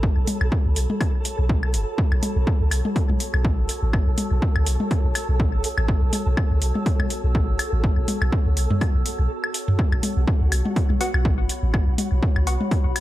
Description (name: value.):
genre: minimal techno.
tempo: 123 BPM.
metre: 4/4.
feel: swing 56% on 16ths.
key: unclear.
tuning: A4 = 439 Hz.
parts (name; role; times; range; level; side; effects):
punchy sub bass; bass; 0.0-12.9 s; F#1 to D2; -22 LUFS; equal; tube saturation, sidechain pumping.
electronic kick drum; drums; 0.0-12.8 s; none; -22 LUFS; equal; overdrive.
flickering grainy texture; texture; 0.0-13.0 s; F#4 to A4; -33 LUFS; right 2 dB; built-in reverb, sidechain pumping.
warbly tape-like pad; texture; 0.0-13.0 s; B3 to E6; -35 LUFS; equal; chorus, built-in reverb, sidechain pumping.
electronic hi-hat; drums; 0.3-13.0 s; none; -29 LUFS; equal; overdrive.
electronic toms and woodblock; percussion; 0.3-13.0 s; none; -26 LUFS; left 1 dB; ping-pong delay.
wavetable chord stab; stabs; 11.0-12.5 s; B3 to F#5; -30 LUFS; left 2 dB; phaser, ping-pong delay.
room: digital ambience.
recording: none.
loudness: -19 LUFS.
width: side -15 dB against mid.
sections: 0.0-13.0 A section.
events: fade-in on ambient pad 0.0-13.0; break 9.3-9.8.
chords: 0.0 B5.